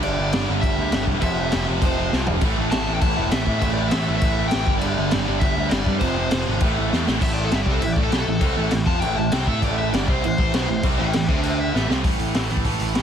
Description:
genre	punk rock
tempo	200 BPM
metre	4/4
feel	straight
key	A minor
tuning	A4 = 439 Hz
part	crunchy overdriven guitar	melody	0.0-11.9 s	A4 to A5	-28 LUFS	left 4 dB	ping-pong delay
part	distorted electric guitar	riff	0.0-13.0 s	F2 to A4	-26 LUFS	right 14 dB	overdrive
part	high-gain distorted guitar	riff	0.0-12.0 s	F2 to A4	-30 LUFS	left 1 dB	distortion
part	tight distorted guitar	riff	0.0-13.0 s	F2 to A4	-30 LUFS	left 13 dB	distortion
part	growling picked electric bass	bass	0.0-13.0 s	E1 to A2	-26 LUFS	equal	overdrive
part	raw garage drum kit	drums	0.0-13.0 s	crash cymbal, hi-hat, kick drum, snare drum, toms	-22 LUFS	equal	none
room	small room ambience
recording	dense, heavily limited modern master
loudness	-18 LUFS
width	side -8 dB against mid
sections	0.0-7.2 A section; 7.2-12.0 B section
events	drum fill 2.1, 6.9-7.2, 11.7-12.0; overdriven electric guitar solo 7.2-12.0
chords	0.0 G5; 1.2 F5; 2.4 A5; 4.7 G5; 6.0 F5; 6.6 A5; 7.2 Am; 11.3 D5; 11.7 Am; 12.0 A5

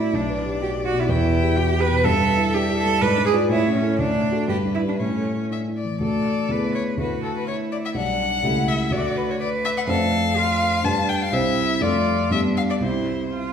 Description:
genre	quick classical-period movement for piano trio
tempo	124 BPM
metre	2/4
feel	straight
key	D major, C major from 9.9 s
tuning	A4 = 439 Hz
part	rich violin	melody	0.0-13.3 s	A4 to A5	-26 LUFS	left 5 dB	none
part	clear cello	second line	0.0-13.5 s	C#4 to B4	-24 LUFS	right 4 dB	none
part	dark concert grand piano	accompaniment	0.0-13.5 s	B1 to D5	-22 LUFS	equal	none
room	wet recital hall reverb, RT60 1.4 s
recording	heard from further back in the room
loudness	-19 LUFS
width	side -8 dB against mid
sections	0.0-6.0 A section; 6.0-13.5 B section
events	none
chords	0.1 G/B; 1.1 Em; 2.1 Em/G; 3.0 G#dim7; 3.5 A; 4.0 D; 4.5 G; 5.0 A; 6.0 D; 6.5 E7/D; 7.0 A5/D; 8.0 G/B; 8.4 A7/C#; 8.9 D; 9.9 Dm7/F; 10.9 G; 11.3 C; 11.8 Dm/F; 12.3 G; 12.8 C

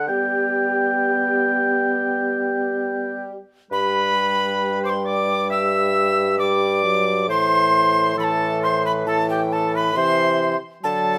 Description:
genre	classical, renaissance-style consort dance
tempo	67 BPM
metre	4/4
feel	straight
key	G major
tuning	A4 = 440 Hz
part	warm oboe	melody	0.0-11.2 s	G4 to G5	-26 LUFS	equal	none
part	alto recorder	second line	0.0-11.2 s	G4 to E6	-24 LUFS	equal	none
part	warm bassoon	bass	0.0-11.2 s	G2 to G3	-26 LUFS	equal	none
part	warm trombone	accompaniment	0.1-11.2 s	E3 to B3	-29 LUFS	equal	none
room	moderate stone room reverb, RT60 1.0 s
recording	none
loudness	-20 LUFS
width	mono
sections	0.0-3.7 A section; 3.7-11.2 A section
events	none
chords	0.1 G; 7.3 Am

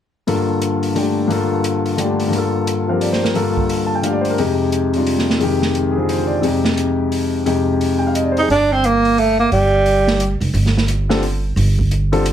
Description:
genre	modal jazz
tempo	175 BPM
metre	3/4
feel	swing 62% on 8ths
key	unclear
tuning	A4 = 440 Hz
part	clear concert grand piano	accompaniment	0.3-8.5, 11.1-12.2 s	F2 to A5	-16 LUFS	left 2 dB	none
part	open jazz drum kit	drums	0.3-12.3 s	hi-hat, kick drum, snare drum	-24 LUFS	right 2 dB	none
part	breathy tenor saxophone	melody	8.4-10.4 s	G3 to Eb4	-14 LUFS	right 2 dB	none
part	upright bass	bass	8.5-12.3 s	F1 to G1	-18 LUFS	right 1 dB	none
room	moderate club reverb, RT60 0.6 s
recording	heavily compressed radio sound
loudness	-15 LUFS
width	side -10 dB against mid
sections	0.3-8.5 A section; 8.5-12.3 B section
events	none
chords	0.3 Gm9; 4.4 Fm9; 8.5 N.C.

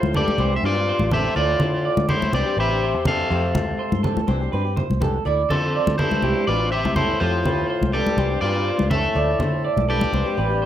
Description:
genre	highlife guitar band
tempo	123 BPM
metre	4/4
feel	swing 53% on 16ths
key	C major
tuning	A4 = 440 Hz
part	electric guitar at the edge of break-up	melody	0.0-10.7 s	C4 to F5	-24 LUFS	left 1 dB	none
part	warm bassoon	second line	0.0-10.7 s	F2 to C3	-28 LUFS	left 7 dB	none
part	electric guitar through a small old amp	arpeggios	0.0-10.7 s	G4 to D5	-26 LUFS	right 6 dB	lush chorus, slapback echo
part	fingered electric bass	bass	0.0-10.7 s	A1 to D3	-24 LUFS	right 1 dB	none
part	congas	percussion	0.0-10.3 s	none	-25 LUFS	left 1 dB	none
part	fingerpicked swing-style acoustic guitar	accompaniment	0.1-10.7 s	E3 to G4	-31 LUFS	left 6 dB	none
room	moderate studio reverb, RT60 0.8 s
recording	none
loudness	-18 LUFS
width	side -11 dB against mid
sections	0.0-10.7 A section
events	none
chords	0.4 Cadd9; 1.4 Dmadd9; 2.3 Cadd9; 3.3 Fadd9; 4.3 Cadd9; 5.3 Dmadd9; 6.2 Cadd9; 7.2 Fadd9; 8.2 Cadd9; 9.2 Dmadd9; 10.1 Cadd9

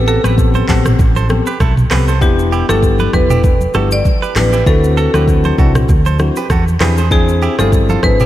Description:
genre	afrobeats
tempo	98 BPM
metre	4/4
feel	swing 55% on 16ths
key	E minor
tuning	A4 = 445 Hz
part	marimba with hard mallets	melody	0.0-8.3 s	G4 to D5	-19 LUFS	equal	analog delay
part	bell-like tine electric piano	accompaniment	0.0-8.3 s	B3 to A4	-19 LUFS	left 5 dB	wide subtle chorus
part	hollow-body short-scale fingered electric bass	bass	0.0-8.3 s	E1 to E2	-14 LUFS	equal	none
part	direct-recorded clean electric guitar	riff	0.1-8.3 s	E4 to C5	-22 LUFS	right 7 dB	analog delay
part	afro-pop drum kit	drums	0.1-8.3 s	handclaps, hi-hat, kick drum, rim click, shaker, toms	-15 LUFS	equal	none
part	congas	percussion	0.2-8.2 s	none	-24 LUFS	right 2 dB	none
room	light reverb, digital ambience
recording	none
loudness	-10 LUFS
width	side -13 dB against mid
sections	0.0-8.3 A section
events	none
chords	0.0 Am9; 2.2 Em7; 4.7 D9; 6.8 E7alt

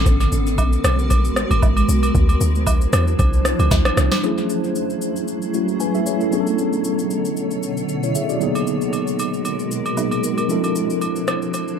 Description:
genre	amapiano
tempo	115 BPM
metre	4/4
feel	swing 55% on 16ths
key	F# minor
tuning	A4 = 444 Hz
part	granular cloud pad	sustained chords	0.0-11.8 s	B2 to C#5	-24 LUFS	right 1 dB	built-in reverb, sidechain pumping
part	deep log drum bass	bass	0.0-4.1 s	G#1 to E2	-18 LUFS	equal	none
part	booming analog drum machine	drums	0.1-11.8 s	kick drum, rim click, shaker, snare drum	-21 LUFS	equal	analog delay
part	agogo bells and woodblock	percussion	0.2-4.2, 8.6-11.7 s	none	-27 LUFS	right 4 dB	none
part	mellow tine electric piano	accompaniment	4.2-11.8 s	F3 to G#5	-21 LUFS	left 1 dB	medium stereo tremolo, analog delay
room	little or no reverb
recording	echo-heavy mix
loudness	-17 LUFS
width	side -7 dB against mid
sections	0.0-4.2 A section; 4.2-11.8 B section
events	drop 0.0-4.2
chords	0.1 G#m9; 2.1 Dm9; 4.2 F#m9; 6.3 Bm9; 8.4 G#m9; 10.5 Dm9

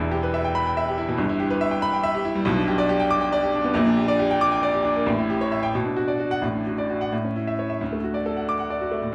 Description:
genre	classical, virtuoso piano study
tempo	86-95 BPM (dotted quarters)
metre	6/8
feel	rubato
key	D major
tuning	A4 = 440 Hz
part	clear baby grand piano	solo	0.0-9.1 s	E1 to D6	-23 LUFS	equal	none
room	wet recital hall reverb, RT60 1.4 s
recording	vinyl crackle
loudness	-23 LUFS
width	mono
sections	0.0-7.8 A section; 7.8-9.1 B section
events	none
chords	0.0 Em; 1.2 Em/G; 2.5 G/B; 3.8 Gm/Bb; 5.1 A7; 5.7 Bm; 6.4 D/A; 7.1 A; 7.8 D

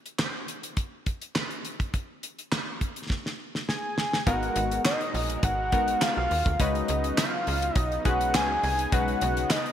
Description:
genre	early-eighties boogie funk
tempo	103 BPM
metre	4/4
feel	straight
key	unclear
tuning	A4 = 440 Hz
part	damped 70s drum kit	drums	0.1-9.7 s	handclaps, hi-hat, kick drum, snare drum	-28 LUFS	equal	none
part	fat analog lead	melody	3.7-9.7 s	D#5 to G#5	-27 LUFS	equal	slapback echo
part	funky polysynth comp	accompaniment	4.3-9.5 s	G#3 to B4	-31 LUFS	left 4 dB	chorus, slapback echo
part	lush unison pad	sustained chords	4.3-9.7 s	B2 to A#4	-36 LUFS	equal	chorus
part	slap-like FM bass	bass	4.3-9.5 s	G#1 to D#2	-30 LUFS	equal	none
room	moderate lush hall reverb, RT60 2.1 s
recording	big arena sound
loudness	-25 LUFS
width	side -10 dB against mid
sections	0.0-4.3 A section; 4.3-9.7 B section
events	drum fill 3.1-4.3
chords	0.0 N.C.; 4.3 G#m9; 6.6 C#9sus4; 8.9 B69

